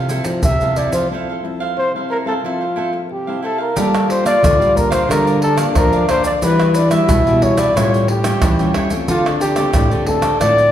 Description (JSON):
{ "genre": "samba and choro", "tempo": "90 BPM", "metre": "4/4", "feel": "straight", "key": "unclear", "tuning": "A4 = 440 Hz", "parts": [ { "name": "cavaquinho", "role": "accompaniment", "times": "0.0-10.7 s", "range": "D4 to G5", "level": "-25 LUFS", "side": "right 5 dB", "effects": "none" }, { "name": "nylon-string guitar", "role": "accompaniment", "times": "0.0-10.7 s", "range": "A2 to A4", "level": "-23 LUFS", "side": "left 2 dB", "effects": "none" }, { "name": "nylon-string guitar", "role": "bass", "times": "0.0-10.7 s", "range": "A2 to G3", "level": "-20 LUFS", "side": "equal", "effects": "none" }, { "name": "tube shaker, pandeiro, surdo and tamborim", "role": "percussion", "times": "0.1-10.7 s", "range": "none", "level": "-20 LUFS", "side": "right 1 dB", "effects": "none" }, { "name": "breathy trumpet", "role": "melody", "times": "0.4-10.7 s", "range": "F4 to E5", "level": "-17 LUFS", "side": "equal", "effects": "none" }, { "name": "breathy trombone", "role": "second line", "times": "3.8-10.7 s", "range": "C#4 to F4", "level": "-22 LUFS", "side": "left 4 dB", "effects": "none" } ], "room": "wet recital hall reverb, RT60 1.4 s", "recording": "recorded in a church or concert hall", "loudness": "-13 LUFS", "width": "side -10 dB against mid", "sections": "0.0-3.8 A section; 3.8-10.7 B section", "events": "break 1.1-3.8", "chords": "0.0 Fmaj7; 3.8 Gm9; 6.4 Em9; 7.8 A7b13; 9.1 Dm7" }